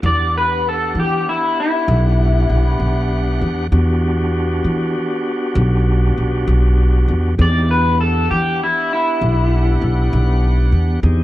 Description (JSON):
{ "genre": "slow blues", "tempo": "66 BPM (dotted quarters)", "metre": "12/8", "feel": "straight", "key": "E minor", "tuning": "A4 = 438 Hz", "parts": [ { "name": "bright tonewheel organ", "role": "sustained chords", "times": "0.0-11.2 s", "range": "B3 to F#5", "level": "-23 LUFS", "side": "equal", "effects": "slow rotary speaker, overdrive" }, { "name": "upright bass", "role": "bass", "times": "0.0-11.2 s", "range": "B1 to E3", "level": "-15 LUFS", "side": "equal", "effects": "none" }, { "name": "electric guitar through a small old amp", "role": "melody", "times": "0.1-10.7 s", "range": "E4 to D5", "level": "-18 LUFS", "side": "left 2 dB", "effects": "lush chorus" } ], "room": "studio reverb", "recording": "dry, close 1970s-style studio recording", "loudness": "-14 LUFS", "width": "side -15 dB against mid", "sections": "0.0-11.2 A section", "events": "clean electric guitar solo 0.0-11.2", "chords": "0.0 Em7" }